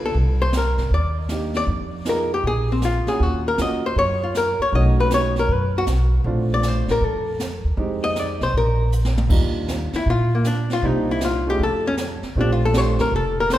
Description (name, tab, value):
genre	jazz, small-group swing and bop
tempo	157 BPM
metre	4/4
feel	swing 66% on 8ths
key	Bb major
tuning	A4 = 440 Hz
part	warm upright piano	accompaniment	0.0-13.0 s	G3 to A4	-28 LUFS	right 2 dB	none
part	upright bass	bass	0.0-13.6 s	F1 to Bb2	-21 LUFS	equal	none
part	archtop guitar, miked and amplified	melody	0.1-13.6 s	Bb3 to Eb5	-22 LUFS	left 2 dB	none
part	jazz brush drum kit	drums	0.1-13.6 s	brushed snare drum, crash cymbal, hi-hat, kick drum, snare drum, toms	-27 LUFS	right 1 dB	none
room	moderate concert hall reverb, RT60 2.0 s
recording	recorded in a church or concert hall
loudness	-18 LUFS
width	side -13 dB against mid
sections	0.0-9.3 A section; 9.3-13.6 B section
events	drum fill 8.9-9.3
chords	0.1 Cm9; 1.7 Fm7b5; 2.4 Bb5; 3.2 Ebm7; 4.7 B9; 6.2 Bbmaj9; 7.8 Fm7; 8.5 N.C.; 9.3 Ebmaj9; 10.8 Cm7; 11.6 F; 12.4 Bbmaj13